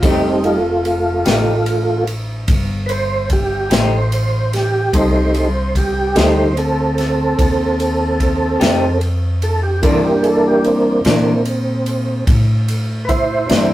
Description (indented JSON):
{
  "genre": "slow blues",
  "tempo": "49 BPM (dotted quarters)",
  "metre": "12/8",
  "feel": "straight",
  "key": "F mixolydian",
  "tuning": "A4 = 440 Hz",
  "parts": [
    { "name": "electric guitar through a small old amp", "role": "accompaniment", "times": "0.0-13.7 s", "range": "C3 to G4", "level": "-19 LUFS", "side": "left 2 dB", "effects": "tremolo" },
    { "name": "tonewheel organ", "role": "sustained chords", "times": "0.0-13.7 s", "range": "E3 to C5", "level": "-16 LUFS", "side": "right 1 dB", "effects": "slow rotary speaker, chorus vibrato" },
    { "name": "upright bass", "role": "bass", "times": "0.0-13.7 s", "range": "F1 to Bb2", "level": "-19 LUFS", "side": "equal", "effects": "none" },
    { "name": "natural country drum kit", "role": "drums", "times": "0.0-13.7 s", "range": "kick drum, ride cymbal, snare drum", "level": "-20 LUFS", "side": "equal", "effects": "none" }
  ],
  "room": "light reverb",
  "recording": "rough rehearsal-room recording",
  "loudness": "-14 LUFS",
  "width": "side -14 dB against mid",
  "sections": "0.0-13.7 A section",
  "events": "tonewheel organ solo 0.0-13.7",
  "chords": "0.0 F9; 9.8 C9",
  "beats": "| 0.03 1.26 2.48 3.71 | 4.94 6.16 7.38 8.61 | 9.83 11.05 12.27 13.49"
}